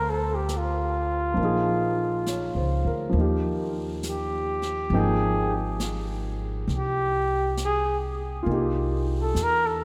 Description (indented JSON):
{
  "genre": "jazz ballad",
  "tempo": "68 BPM",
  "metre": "4/4",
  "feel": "swing 66% on 8ths",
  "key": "unclear",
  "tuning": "A4 = 439 Hz",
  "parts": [
    { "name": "warm flugelhorn", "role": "melody", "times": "0.0-9.8 s", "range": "F4 to Bb4", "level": "-30 LUFS", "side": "equal", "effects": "none" },
    { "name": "warm grand piano", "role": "accompaniment", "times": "0.0-9.8 s", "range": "F3 to G5", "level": "-31 LUFS", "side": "equal", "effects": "none" },
    { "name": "upright bass", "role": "bass", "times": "0.0-9.8 s", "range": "Ab1 to E2", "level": "-31 LUFS", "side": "equal", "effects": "none" },
    { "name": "jazz brush drum kit", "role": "drums", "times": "0.5-9.8 s", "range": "brushed snare drum, hi-hat, snare drum", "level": "-43 LUFS", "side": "equal", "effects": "none" }
  ],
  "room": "wet cathedral reverb, RT60 5.5 s",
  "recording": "in a vast, echoing space",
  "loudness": "-26 LUFS",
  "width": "mono",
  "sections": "0.0-9.8 A section",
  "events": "flugelhorn solo 0.0-9.8",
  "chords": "0.0 Gsus2; 1.4 Bbm7; 3.1 Eb; 4.9 Abmaj9; 8.5 Cm7",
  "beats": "0.49 | 1.37 2.26 3.15 4.03 | 4.92 5.80 6.69 7.58 | 8.47 9.36"
}